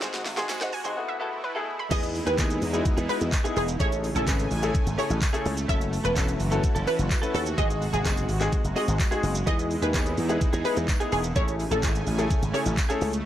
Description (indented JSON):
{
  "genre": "dance-pop",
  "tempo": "127 BPM",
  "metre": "4/4",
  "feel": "straight",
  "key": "E major",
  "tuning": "A4 = 439 Hz",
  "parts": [
    { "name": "warm grand piano", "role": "accompaniment", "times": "0.0-13.1 s", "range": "G#3 to B4", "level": "-31 LUFS", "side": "left 3 dB", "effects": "sidechain pumping" },
    { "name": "supersaw pad", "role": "sustained chords", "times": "0.0-13.3 s", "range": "B2 to G#5", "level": "-34 LUFS", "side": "right 2 dB", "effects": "sidechain pumping" },
    { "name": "glassy wavetable pluck", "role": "arpeggios", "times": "0.0-1.9 s", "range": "B4 to B#5", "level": "-36 LUFS", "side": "right 2 dB", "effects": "chorus, sidechain pumping, digital delay" },
    { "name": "direct-recorded clean electric guitar", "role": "riff", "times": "0.0-13.2 s", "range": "B3 to A4", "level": "-36 LUFS", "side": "right 4 dB", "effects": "ensemble chorus" },
    { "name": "slap bass with an envelope filter", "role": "bass", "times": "0.0-13.2 s", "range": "E1 to G#2", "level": "-28 LUFS", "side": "equal", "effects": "sidechain pumping" },
    { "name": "pop drum kit", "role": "drums", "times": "0.0-13.2 s", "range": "crash cymbal, handclaps, hi-hat, kick drum, shaker, snare drum", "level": "-27 LUFS", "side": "equal", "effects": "none" },
    { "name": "tambourine", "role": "percussion", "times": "0.5-12.9 s", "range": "none", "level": "-42 LUFS", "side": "right 7 dB", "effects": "none" },
    { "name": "wide unison pluck", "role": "melody", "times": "1.9-12.6 s", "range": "G#4 to E5", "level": "-31 LUFS", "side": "equal", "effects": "wide subtle chorus, digital delay" }
  ],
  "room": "little or no reverb",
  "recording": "blown-out, overdriven recording, overdrive, high-pass filter",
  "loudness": "-23 LUFS",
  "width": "side -12 dB against mid",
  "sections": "0.0-1.9 A section; 1.9-13.3 B section",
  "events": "build-up 0.0-1.9; drum fill 0.0-1.0; drop 1.9-13.3",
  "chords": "0.0 G#7; 1.0 B7sus4; 1.9 Emaj7; 3.8 Amaj7; 5.7 F#m7; 7.6 G#7; 9.5 Emaj7; 11.4 Amaj7"
}